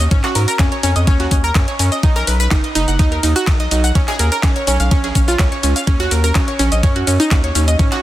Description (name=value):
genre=progressive house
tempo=125 BPM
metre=4/4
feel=straight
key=Eb minor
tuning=A4 = 440 Hz
part: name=analog pluck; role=arpeggios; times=0.0-8.0 s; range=Db4 to F#6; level=-18 LUFS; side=right 1 dB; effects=chorus, sidechain pumping, tape echo
part: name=round analog bass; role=bass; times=0.0-7.9 s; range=F#1 to Ab2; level=-18 LUFS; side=equal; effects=sidechain pumping
part: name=breakbeat sampler-style drum kit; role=drums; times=0.0-8.0 s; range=ride cymbal, snare drum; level=-31 LUFS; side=right 3 dB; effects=none
part: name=pop drum kit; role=drums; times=0.0-8.0 s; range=handclaps, hi-hat, shaker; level=-22 LUFS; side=left 1 dB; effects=overdrive, sidechain pumping on hats, sidechain pumping on perc
part: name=electronic kick drum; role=drums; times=0.1-7.9 s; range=none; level=-15 LUFS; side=equal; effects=overdrive
room=little or no reverb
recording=dense, heavily limited modern master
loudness=-13 LUFS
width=side -14 dB against mid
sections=0.0-8.0 A section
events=none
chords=0.0 Ebm7; 2.0 Bmaj7; 4.0 Bbm7; 5.9 Ebm7